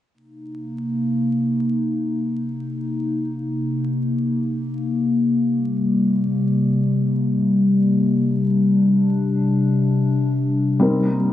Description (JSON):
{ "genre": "trip hop", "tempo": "free time", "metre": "none", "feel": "none", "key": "C minor", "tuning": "A4 = 441 Hz", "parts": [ { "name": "warbly tape-like pad", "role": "sustained chords", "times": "0.1-11.3 s", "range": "C3 to Eb4", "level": "-18 LUFS", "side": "left 2 dB", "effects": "chorus, built-in reverb" }, { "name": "felt-muted upright piano", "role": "accompaniment", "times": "10.8-11.3 s", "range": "G3 to Bb4", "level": "-17 LUFS", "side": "left 1 dB", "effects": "harmonic tremolo" } ], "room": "light reverb, studio reverb", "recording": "vinyl crackle, nothing above 10.4 kHz", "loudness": "-18 LUFS", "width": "side -12 dB against mid", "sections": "0.1-11.3 A section", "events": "filter sweep on ambient pad 0.1-11.3", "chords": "0.1 Cm7; 5.5 Gmadd11/C; 8.1 Gsus4/C; 10.8 Cm7" }